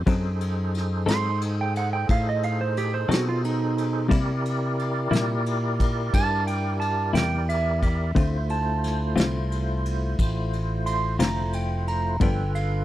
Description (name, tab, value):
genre	slow blues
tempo	59 BPM (dotted quarters)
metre	12/8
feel	straight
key	C mixolydian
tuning	A4 = 440 Hz
part	tonewheel organ	sustained chords	0.0-12.8 s	D3 to D5	-31 LUFS	equal	slow rotary speaker, overdrive, chorus vibrato
part	fingered electric bass	bass	0.0-12.8 s	F1 to C3	-26 LUFS	equal	none
part	clean electric guitar	accompaniment	0.1-12.4 s	G2 to A4	-25 LUFS	left 4 dB	tremolo
part	vintage brush drum kit	drums	0.1-12.7 s	kick drum, ride cymbal, snare drum	-28 LUFS	equal	none
part	clean lap steel guitar	second line	1.1-12.8 s	D#4 to C6	-28 LUFS	right 5 dB	none
room	little or no reverb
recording	dry, close 1970s-style studio recording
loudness	-22 LUFS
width	side -14 dB against mid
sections	0.0-12.8 A section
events	electric slide guitar solo 0.0-12.8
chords	0.1 F#dim7; 4.1 C7; 8.2 Dm7; 12.2 G7